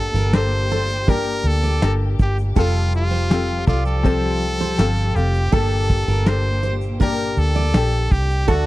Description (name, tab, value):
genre	acoustic pop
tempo	81 BPM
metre	4/4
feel	straight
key	G minor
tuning	A4 = 441 Hz
part	brilliant trumpet	melody	0.0-8.7 s	F4 to C5	-24 LUFS	equal	none
part	clear baby grand piano	accompaniment	0.0-8.7 s	G3 to D5	-32 LUFS	left 5 dB	none
part	ukulele	accompaniment	0.0-8.7 s	C4 to D5	-27 LUFS	left 5 dB	none
part	warm studio string section	sustained chords	0.0-8.7 s	Bb2 to G4	-30 LUFS	left 2 dB	none
part	vintage muted fingered electric bass	bass	0.0-8.7 s	F1 to D2	-20 LUFS	equal	none
part	picked steel-string acoustic guitar	arpeggios	0.2-8.7 s	A4 to D5	-28 LUFS	right 7 dB	none
part	soft brush drum kit	drums	0.2-8.7 s	kick drum, shaker, snare drum	-17 LUFS	equal	none
room	little or no reverb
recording	dry, close 1970s-style studio recording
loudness	-16 LUFS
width	side -17 dB against mid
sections	0.0-8.7 A section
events	none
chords	0.0 Gmadd9; 2.6 Fadd9; 5.5 Gmadd9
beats	0.34 1.08 1.82 | 2.56 3.30 4.04 4.79 | 5.53 6.27 7.00 7.74 | 8.48